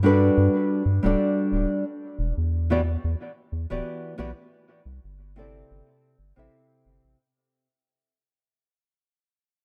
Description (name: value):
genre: sunset chillout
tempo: 90 BPM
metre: 4/4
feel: swing 56% on 16ths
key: unclear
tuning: A4 = 438 Hz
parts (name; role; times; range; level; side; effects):
- nylon-string guitar; accompaniment; 0.0-7.2 s; C3 to E5; -25 LUFS; equal; analog delay
- round analog bass; bass; 0.0-7.2 s; D1 to G2; -26 LUFS; equal; none
room: light reverb, small room reverb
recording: echo-heavy mix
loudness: -24 LUFS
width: mono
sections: 0.0-7.2 A section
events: fade-out 0.0-7.2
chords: 0.0 Gmaj7; 1.9 Em9; 4.5 C6